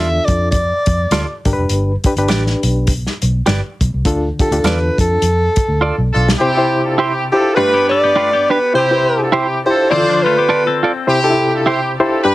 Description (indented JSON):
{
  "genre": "uptempo 1960s-style soul",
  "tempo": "102 BPM",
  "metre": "4/4",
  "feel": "swing 58% on 8ths",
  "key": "unclear",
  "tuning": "A4 = 440 Hz",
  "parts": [
    { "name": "warm alto saxophone", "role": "melody", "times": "0.0-10.8 s", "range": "G4 to E5", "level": "-15 LUFS", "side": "equal", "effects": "none" },
    { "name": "barky reed electric piano", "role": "accompaniment", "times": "0.0-12.3 s", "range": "G2 to D5", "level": "-18 LUFS", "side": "left 1 dB", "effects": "overdrive, fast tremolo" },
    { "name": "semi-hollow electric guitar", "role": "stabs", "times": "0.0-11.8 s", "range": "D4 to D5", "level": "-17 LUFS", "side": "right 3 dB", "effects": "none" },
    { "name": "vintage muted fingered electric bass", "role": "bass", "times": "0.0-6.3 s", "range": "F1 to F2", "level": "-17 LUFS", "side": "equal", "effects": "none" },
    { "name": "warm soul drum kit", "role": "drums", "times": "0.3-6.4 s", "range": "hi-hat, kick drum, snare drum", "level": "-18 LUFS", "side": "equal", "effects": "none" },
    { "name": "warm horn section", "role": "second line", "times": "5.8-12.3 s", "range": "C4 to C5", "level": "-19 LUFS", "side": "right 1 dB", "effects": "tape echo" },
    { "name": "semi-hollow electric guitar", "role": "riff", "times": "7.6-11.1 s", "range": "E3 to A4", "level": "-19 LUFS", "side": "left 7 dB", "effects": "none" }
  ],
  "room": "light reverb",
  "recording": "heavily compressed radio sound, multiband compression",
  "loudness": "-12 LUFS",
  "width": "side -16 dB against mid",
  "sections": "0.0-6.4 A section; 6.4-12.3 B section",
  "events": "band accent 4.1-6.4; drum fill 5.8-6.4",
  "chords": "0.0 Dm; 1.4 G; 4.1 Dm; 6.4 C; 7.6 G; 8.7 C; 9.9 Dm; 11.1 C"
}